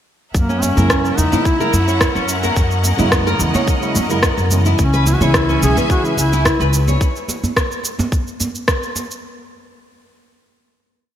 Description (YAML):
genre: organic downtempo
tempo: 108 BPM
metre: 4/4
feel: straight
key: C# dorian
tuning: A4 = 437 Hz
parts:
  - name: clear studio string section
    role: sustained chords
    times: 0.3-7.0 s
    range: C#4 to G#5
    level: -24 LUFS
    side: left 1 dB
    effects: sidechain pumping
  - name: upright bass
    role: bass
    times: 0.3-6.9 s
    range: B1 to F#2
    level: -17 LUFS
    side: equal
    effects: tube saturation, sidechain pumping
  - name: electronic cabasa and rim click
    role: drums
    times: 0.3-9.2 s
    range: none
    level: -21 LUFS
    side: equal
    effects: gated reverb
  - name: electronic kick drum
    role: drums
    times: 0.3-8.8 s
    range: none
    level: -18 LUFS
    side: equal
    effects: none
  - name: mellow duduk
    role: melody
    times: 0.4-6.7 s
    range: A#3 to G#4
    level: -21 LUFS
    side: equal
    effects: digital delay
  - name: nylon-string guitar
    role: arpeggios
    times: 0.5-7.1 s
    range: C#4 to C#5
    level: -23 LUFS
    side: left 1 dB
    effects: wide subtle chorus, low-pass filter, digital delay
  - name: djembe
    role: percussion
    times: 0.6-9.1 s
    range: none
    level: -25 LUFS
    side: right 2 dB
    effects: none
  - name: tine electric piano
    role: accompaniment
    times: 0.7-6.1 s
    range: C#3 to E4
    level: -23 LUFS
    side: right 2 dB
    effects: analog chorus, sidechain pumping, digital delay
room: moderate lush hall reverb, RT60 2.5 s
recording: bright 1980s-style digital production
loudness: -14 LUFS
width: side -10 dB against mid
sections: 0.3-9.2 groove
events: none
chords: 0.3 F#7; 4.8 C#m